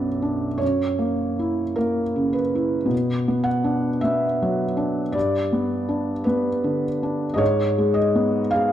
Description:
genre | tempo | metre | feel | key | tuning
classical, romantic nocturne for solo piano | 53 BPM | 4/4 | rubato | B minor | A4 = 439 Hz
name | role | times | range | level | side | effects
felt-muted upright piano | solo | 0.0-8.7 s | B1 to F#5 | -20 LUFS | equal | none
room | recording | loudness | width
moderate recital hall reverb, RT60 1.3 s | dark, warm production | -20 LUFS | side -11 dB against mid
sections
0.0-8.7 A section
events
none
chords
0.0 Bm; 0.6 F#7; 2.9 Bm; 5.2 G; 7.4 G#madd11

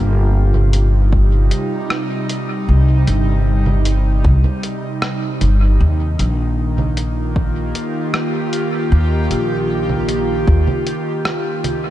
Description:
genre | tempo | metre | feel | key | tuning
ambient dub | 77 BPM | 4/4 | straight | C minor | A4 = 441 Hz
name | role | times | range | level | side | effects
airy breathy pad | sustained chords | 0.0-11.9 s | C3 to G4 | -20 LUFS | right 1 dB | chorus
upright bass | bass | 0.0-10.7 s | G1 to Eb2 | -14 LUFS | equal | none
lo-fi sampler-style drum kit | drums | 0.5-11.8 s | congas, hi-hat, rim click | -24 LUFS | right 2 dB | dub echo
electronic kick drum | drums | 1.1-10.6 s | none | -19 LUFS | equal | overdrive
room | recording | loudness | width
light reverb | nothing above 11.0 kHz | -14 LUFS | side -13 dB against mid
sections
0.0-11.9 A section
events
none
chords
0.0 Cm7; 5.8 Eb

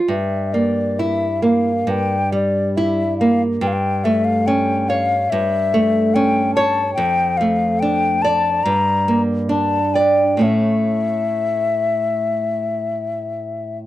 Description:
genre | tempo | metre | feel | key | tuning
romantic duo for flute and classical guitar | 70 BPM | 4/4 | uneven beats, rubato | unclear | A4 = 440 Hz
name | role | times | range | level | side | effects
nylon-string guitar | accompaniment | 0.0-13.9 s | F2 to D5 | -18 LUFS | right 1 dB | none
mellow hollow silver concert flute | melody | 0.1-13.8 s | D5 to Bb5 | -19 LUFS | left 4 dB | none
room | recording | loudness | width
light reverb | dry, close 1970s-style studio recording | -16 LUFS | side -14 dB against mid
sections
0.1-13.9 A section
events
none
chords
0.1 Edim/G; 3.6 A7/G; 7.0 Dm/F; 8.7 Gm; 10.4 A

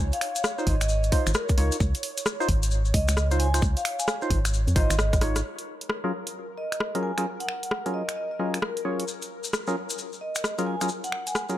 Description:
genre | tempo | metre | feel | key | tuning
UK garage, two-step garage | 132 BPM | 4/4 | swing 64% on 16ths | Gb lydian | A4 = 441 Hz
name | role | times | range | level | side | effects
airy breathy pad | sustained chords | 0.0-11.6 s | Bb4 to Db5 | -40 LUFS | right 2 dB | chorus, sidechain pumping
organ-like FM bass | bass | 0.0-5.4 s | Ab1 to F2 | -24 LUFS | equal | none
vibraphone with soft mallets | melody | 0.1-11.5 s | Bb4 to Ab5 | -32 LUFS | equal | none
punchy analog drum machine | drums | 0.1-11.6 s | finger snaps, hi-hat, rim click | -30 LUFS | equal | overdrive
maracas | percussion | 0.1-5.4, 9.1-11.6 s | none | -35 LUFS | left 5 dB | none
percussive organ stab | stabs | 0.6-11.6 s | Gb3 to Db5 | -31 LUFS | equal | chorus, ping-pong delay
electronic kick drum | drums | 0.7-5.2 s | none | -24 LUFS | equal | none
room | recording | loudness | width
digital ambience | none | -24 LUFS | side -13 dB against mid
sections
0.0-5.4 A section; 5.4-11.6 B section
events
drum fill 5.1-5.4; band accent 5.3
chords
0.0 Dbmaj9; 5.4 Gbmaj9

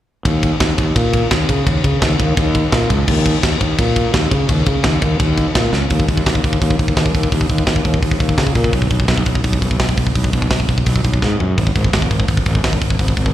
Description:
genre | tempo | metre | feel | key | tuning
heavy metal | 169 BPM | 4/4 | straight | unclear | A4 = 440 Hz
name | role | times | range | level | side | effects
fuzz fingered electric bass | bass | 0.3-13.3 s | Ab1 to Db3 | -16 LUFS | equal | overdrive
tight metal drum kit | drums | 0.3-13.3 s | crash cymbal, hi-hat, kick drum, ride cymbal, snare drum, toms | -17 LUFS | equal | none
room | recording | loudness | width
little or no reverb | live gig heard through the venue's PA, recital hall reverb | -14 LUFS | side -13 dB against mid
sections
0.3-5.9 A section; 5.9-13.3 B section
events
drum fill 5.7, 11.2-11.6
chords
none

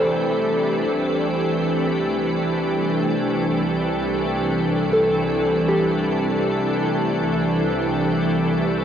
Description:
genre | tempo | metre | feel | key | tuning
ambient | free time | none | none | C major | A4 = 440 Hz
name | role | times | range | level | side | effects
soft additive organ-like pad | sustained chords | 0.0-8.8 s | E3 to G4 | -20 LUFS | equal | ensemble chorus, built-in reverb, cassette tape
soft synth bell | arpeggios | 0.0-8.8 s | G4 to D5 | -25 LUFS | equal | chorus, cassette tape, analog delay
rich studio cello section | bass | 0.0-8.8 s | C2 | -29 LUFS | equal | none
room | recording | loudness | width
wet spring reverb, RT60 1.9 s, small room ambience | home recording on cassette | -19 LUFS | side -9 dB against mid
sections
0.0-8.8 A section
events
none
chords
0.0 C6

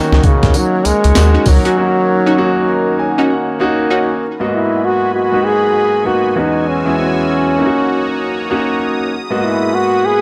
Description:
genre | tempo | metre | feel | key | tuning
R&B, new jack swing | 98 BPM | 4/4 | swing 63% on 16ths | G# minor | A4 = 439 Hz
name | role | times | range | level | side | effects
clear trombone | melody | 0.0-10.2 s | C#3 to G#4 | -18 LUFS | equal | none
warm concert grand piano | accompaniment | 0.0-10.2 s | E2 to A#5 | -19 LUFS | equal | none
sweeping resonant pad | sustained chords | 0.0-10.2 s | D#4 to E6 | -25 LUFS | equal | chorus
round analog bass | bass | 0.1-1.6 s | C#2 to D#2 | -14 LUFS | equal | none
breakbeat sampler-style drum kit | drums | 0.1-1.8 s | handclaps, hi-hat, kick drum, snare drum, tambourine | -16 LUFS | equal | none
funky polysynth comp | stabs | 1.3-4.1 s | C#4 to F#4 | -22 LUFS | equal | chorus, digital delay
room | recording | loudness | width
light reverb, digital ambience | none | -14 LUFS | mono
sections
0.0-4.2 A section; 4.2-10.2 B section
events
break 1.8-4.2; grand piano fill 2.4-4.2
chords
0.0 D#m7; 4.2 G#m7; 6.4 E69; 7.6 D#m7; 9.1 G#m7

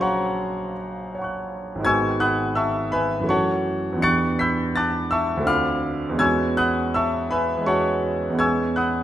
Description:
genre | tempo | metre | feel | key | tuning
classical, impressionist solo piano | 82 BPM | 3/4 | rubato | unclear | A4 = 444 Hz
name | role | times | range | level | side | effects
clear concert grand piano | solo | 0.0-9.0 s | G#1 to C#7 | -20 LUFS | equal | none
room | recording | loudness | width
wet recital hall reverb, RT60 1.3 s | none | -20 LUFS | side -12 dB against mid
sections
0.0-9.0 A section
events
none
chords
0.0 F#maj7/A#; 1.9 G#m7; 3.3 F#m7; 4.0 Em7; 5.5 Dm7; 6.2 E69

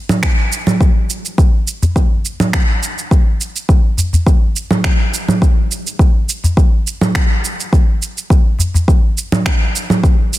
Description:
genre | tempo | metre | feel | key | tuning
downtempo | 104 BPM | 4/4 | swing 53% on 16ths | none | none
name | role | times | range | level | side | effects
electronic congas, shaker and finger snaps | drums | 0.1-10.4 s | none | -17 LUFS | right 2 dB | studio reverb, soft clipping on snare
electronic kick drum | drums | 0.2-10.2 s | none | -12 LUFS | equal | studio reverb
udu | percussion | 1.8-8.9 s | none | -15 LUFS | left 1 dB | none
room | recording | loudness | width
little or no reverb | dense, heavily limited modern master | -12 LUFS | side -16 dB against mid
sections
0.0-10.4 A section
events
none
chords
none

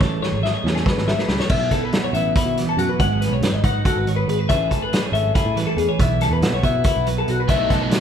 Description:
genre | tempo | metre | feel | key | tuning
math rock and midwest emo | 280 BPM (eighths) | 7/8 | straight | unclear | A4 = 439 Hz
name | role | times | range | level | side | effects
twelve-string electric guitar | accompaniment | 0.0-8.0 s | A2 to D#5 | -25 LUFS | right 8 dB | spring reverb
twelve-string electric guitar | arpeggios | 0.0-8.0 s | E4 to F#5 | -22 LUFS | left 6 dB | none
picked electric bass | bass | 0.0-7.7 s | G#1 to B2 | -24 LUFS | equal | none
loose indie drum kit | drums | 0.0-8.0 s | crash cymbal, hi-hat, kick drum, snare drum | -22 LUFS | right 1 dB | none
biting overdriven guitar | riff | 7.5-8.0 s | B2 to D#4 | -23 LUFS | right 2 dB | none
room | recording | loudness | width
moderate recital hall reverb, RT60 1.9 s | recorded in a church or concert hall | -17 LUFS | side -8 dB against mid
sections
0.0-1.5 A section; 1.5-8.0 B section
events
drum fill 0.0-1.5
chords
0.0 Amaj7; 1.5 B7sus4; 3.0 G#m7; 4.5 Amaj9; 6.0 B7sus4

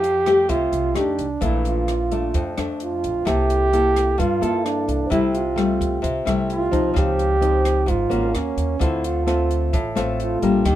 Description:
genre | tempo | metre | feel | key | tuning
bossa nova | 130 BPM | 4/4 | straight | F major | A4 = 440 Hz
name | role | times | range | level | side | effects
breathy flugelhorn | melody | 0.0-10.8 s | Db4 to G4 | -22 LUFS | right 2 dB | none
nylon-string guitar | accompaniment | 0.0-10.8 s | F2 to A4 | -22 LUFS | left 3 dB | none
upright bass | bass | 0.0-10.8 s | Ab1 to G2 | -25 LUFS | right 1 dB | none
compact cocktail drum kit | drums | 0.0-10.8 s | hi-hat, kick drum, rim click | -27 LUFS | equal | none
room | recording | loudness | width
light reverb | minimal, uncompressed stereo recording | -18 LUFS | side -12 dB against mid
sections
0.0-10.8 A section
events
none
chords
0.0 Fadd9; 1.0 F9; 1.4 Bbmaj7#11; 3.3 C13; 5.1 Fmaj9/C; 7.0 Dbmaj9; 8.3 Ebm7; 8.8 Dm7

